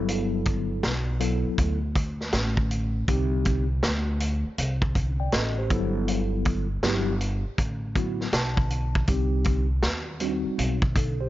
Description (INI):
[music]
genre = hip hop, jazz-hop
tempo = 80 BPM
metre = 4/4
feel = swing 65% on 16ths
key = G major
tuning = A4 = 440 Hz
[part]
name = mellow tine electric piano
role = accompaniment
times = 0.0-11.3 s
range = F#3 to A5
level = -29 LUFS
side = left 1 dB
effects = medium stereo tremolo
[part]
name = upright bass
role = bass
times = 0.0-11.3 s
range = G1 to Eb2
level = -27 LUFS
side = equal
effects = none
[part]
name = vintage drum kit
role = drums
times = 0.1-11.2 s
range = hi-hat, kick drum, snare drum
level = -27 LUFS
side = equal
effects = none
[sound]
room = small room ambience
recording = nothing above 7.5 kHz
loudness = -23 LUFS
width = side -15 dB against mid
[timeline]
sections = 0.0-11.3 A section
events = tine electric piano fill 8.0-9.1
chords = 0.0 Gmaj9; 3.1 Cm; 5.7 Gmaj9; 9.1 Cm